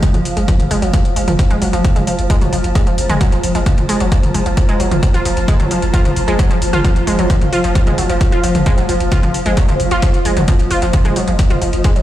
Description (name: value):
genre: driving peak-time techno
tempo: 132 BPM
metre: 4/4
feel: straight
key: F phrygian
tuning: A4 = 440 Hz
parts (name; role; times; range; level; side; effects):
- wide unison pluck; riff; 0.0-12.0 s; F3 to F4; -20 LUFS; equal; overdrive, vintage 12-bit sampler grit, sidechain pumping, dub echo
- growling 808-style bass; bass; 0.0-11.8 s; F1; -20 LUFS; equal; overdrive, sidechain pumping, low-pass filter
- swarming drone; drone; 0.0-12.0 s; F3; -24 LUFS; left 1 dB; built-in reverb, sidechain pumping
- electronic kick drum; drums; 0.0-11.9 s; none; -15 LUFS; equal; none
- techno drum kit; drums; 0.0-12.0 s; hi-hat, toms; -23 LUFS; left 1 dB; sidechain pumping on hats, sidechain pumping on toms
- granular cloud pad; texture; 0.0-12.0 s; F4 to Bb5; -22 LUFS; right 1 dB; built-in reverb, sidechain pumping
room: digital ambience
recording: played on a big sound system in a bare room, stone room reverb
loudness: -12 LUFS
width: side -13 dB against mid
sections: 0.0-12.0 A section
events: none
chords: 0.0 F5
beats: 0.03 0.48 0.94 | 1.39 1.84 2.30 2.75 | 3.21 3.66 4.12 4.57 | 5.03 5.48 5.93 6.39 | 6.84 7.30 7.75 8.21 | 8.66 9.12 9.57 10.03 | 10.48 10.94 11.39 11.84